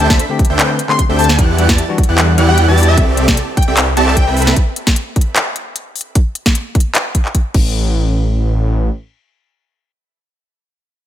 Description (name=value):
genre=future bass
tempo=151 BPM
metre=4/4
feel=swing 53% on 16ths, half-time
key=A dorian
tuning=A4 = 440 Hz
part: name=plucky unison lead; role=melody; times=0.0-4.4 s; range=E5 to C6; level=-20 LUFS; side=left 1 dB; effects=lush chorus, sidechain pumping, digital delay
part: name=bell-like tine electric piano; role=accompaniment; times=0.0-2.9 s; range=D3 to B4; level=-21 LUFS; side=left 4 dB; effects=vintage 12-bit sampler grit, sidechain pumping, ping-pong delay
part: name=airy dreamy lead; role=arpeggios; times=0.0-3.0 s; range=F#6 to B6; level=-23 LUFS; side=right 1 dB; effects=chorus, sidechain pumping
part: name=supersaw chords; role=riff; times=0.0-4.5 s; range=E3 to B5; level=-17 LUFS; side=right 1 dB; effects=sidechain pumping, ping-pong delay
part: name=wide detuned saw bass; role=bass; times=0.0-4.5, 7.5-8.9 s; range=A1 to E2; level=-14 LUFS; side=equal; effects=chorus, sidechain pumping
part: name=trap drum kit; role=drums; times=0.0-7.6 s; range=crash cymbal, handclaps, hi-hat, snare drum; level=-17 LUFS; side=left 1 dB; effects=none
part: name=electronic kick drum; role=drums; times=0.1-7.6 s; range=none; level=-13 LUFS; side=equal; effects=none
room=digital ambience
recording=none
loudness=-11 LUFS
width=side -11 dB against mid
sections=0.0-7.7 A section; 7.7-10.9 B section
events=drop 0.0-7.7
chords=0.0 D7sus4; 1.4 Em9; 3.0 C6; 4.4 Am/C; 6.2 N.C.